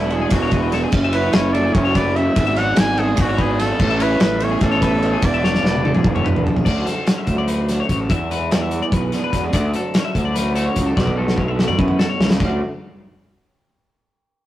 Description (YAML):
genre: math rock and midwest emo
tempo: 293 BPM (eighths)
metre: 7/8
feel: straight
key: D lydian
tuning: A4 = 440 Hz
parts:
  - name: warm trumpet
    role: melody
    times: 0.0-6.3 s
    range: E4 to G#5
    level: -22 LUFS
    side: left 1 dB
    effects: none
  - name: electric guitar through a small old amp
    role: accompaniment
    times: 0.0-12.6 s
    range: D2 to F#4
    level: -24 LUFS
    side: right 4 dB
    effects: none
  - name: twelve-string electric guitar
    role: arpeggios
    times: 0.0-12.6 s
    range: G#4 to E5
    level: -26 LUFS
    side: left 6 dB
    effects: none
  - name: fuzz fingered electric bass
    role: bass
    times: 0.0-12.6 s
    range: E1 to F#2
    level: -21 LUFS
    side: equal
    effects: overdrive
  - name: loose indie drum kit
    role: drums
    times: 0.1-12.5 s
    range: crash cymbal, hi-hat, kick drum, ride cymbal, snare drum, toms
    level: -20 LUFS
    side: equal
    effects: none
room: light reverb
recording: rough rehearsal-room recording, warm saturation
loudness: -16 LUFS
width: side -14 dB against mid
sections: 0.0-6.7 A section; 6.7-12.4 B section; 12.4-13.8 C section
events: drum fill 5.4-6.7, 11.0-12.4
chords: 0.0 E7; 0.9 F#m7; 2.4 E7/G# (rootless); 3.8 Amaj9; 5.2 E7; 6.7 Dmaj7; 8.1 E7; 9.5 Dmaj7; 11.0 Bm7; 12.4 D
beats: 0.12 0.33 0.53 0.74 | 0.94 1.15 1.35 1.55 1.76 1.96 2.17 | 2.37 2.58 2.78 2.98 3.19 3.39 3.60 | 3.80 4.01 4.21 4.42 4.62 4.82 5.03 | 5.23 5.44 5.64 5.85 6.05 6.26 6.46 | 6.67 6.87 7.08 7.28 7.49 7.69 7.90 | 8.10 8.31 8.51 8.72 8.92 9.13 9.33 | 9.54 9.74 9.95 10.15 10.36 10.56 10.77 | 10.97 11.18 11.38 11.59 11.79 11.99 12.20 | 12.40 12.61